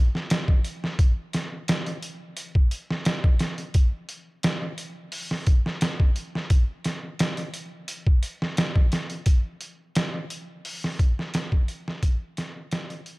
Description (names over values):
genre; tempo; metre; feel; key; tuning
trip hop; 87 BPM; 4/4; straight; none; none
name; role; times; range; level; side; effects
trip hop sampler-style drum kit; drums; 0.2-13.2 s; hi-hat, kick drum, snare drum; -22 LUFS; equal; none
room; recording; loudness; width
light reverb; none; -23 LUFS; side -23 dB against mid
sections
0.0-13.2 A section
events
fade-out 10.2-13.2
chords
none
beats
0.30 | 0.99 1.68 2.37 3.06 | 3.75 4.44 5.13 5.82 | 6.51 7.20 7.89 8.58 | 9.27 9.96 10.65 11.34 | 12.03 12.72